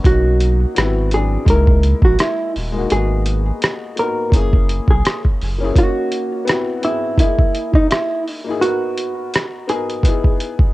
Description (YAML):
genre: lo-fi hip hop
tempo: 84 BPM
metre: 4/4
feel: swing 55% on 16ths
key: unclear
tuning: A4 = 440 Hz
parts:
  - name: warm upright piano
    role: accompaniment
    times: 0.0-10.7 s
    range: F#3 to D#5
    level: -23 LUFS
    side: left 4 dB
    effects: cassette tape
  - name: lo-fi sampler-style drum kit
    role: drums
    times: 0.0-10.7 s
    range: hi-hat, kick drum, rim click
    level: -15 LUFS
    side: equal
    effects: none
  - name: hollow-body jazz guitar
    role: melody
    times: 0.1-10.7 s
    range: D#4 to A#4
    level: -20 LUFS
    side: right 2 dB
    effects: cassette tape
  - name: warm sub bass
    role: bass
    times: 0.1-5.7 s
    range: D#1 to C#2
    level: -17 LUFS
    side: equal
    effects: none
room: digital ambience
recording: home recording on cassette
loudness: -14 LUFS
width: side -18 dB against mid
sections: 0.0-10.7 A section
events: none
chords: 0.0 Bmaj9; 0.8 G#7alt; 1.5 C#m69; 2.9 G#m9; 4.3 F#9; 5.8 F#6/A#; 6.5 G#7alt; 7.2 Emaj7#11/A#; 8.6 Bmaj7; 10.0 Emaj7/B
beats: | 0.04 0.76 1.47 2.19 | 2.90 3.62 4.33 5.04 | 5.76 6.47 7.19 7.90 | 8.62 9.33 10.04